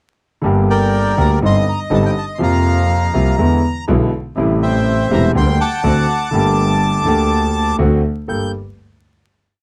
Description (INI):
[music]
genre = tango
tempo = 122 BPM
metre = 4/4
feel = rubato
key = G minor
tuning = A4 = 440 Hz
[part]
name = warm concert grand piano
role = accompaniment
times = 0.4-8.5 s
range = E1 to A4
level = -19 LUFS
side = equal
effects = none
[part]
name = clear double bass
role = bass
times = 0.4-8.5 s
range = E1 to F2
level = -20 LUFS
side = equal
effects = none
[part]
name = bandoneon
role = melody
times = 0.7-8.5 s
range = Bb4 to G6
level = -21 LUFS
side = equal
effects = none
[sound]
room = little or no reverb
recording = dry, close 1970s-style studio recording, vinyl crackle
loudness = -16 LUFS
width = mono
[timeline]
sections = 0.4-8.3 A section; 8.3-9.6 final chord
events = none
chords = 0.4 Gm; 1.4 Cmadd9/G; 2.4 Fsus4; 3.4 E7; 4.4 Am7; 5.3 Gm/D; 5.8 D7; 6.3 Gmadd9; 7.8 D7; 8.3 Gmadd9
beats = | 0.44 0.93 1.42 1.92 | 2.41 2.90 3.39 3.88 | 4.37 4.86 5.35 5.83 | 6.32 6.81 7.30 7.79 | 8.28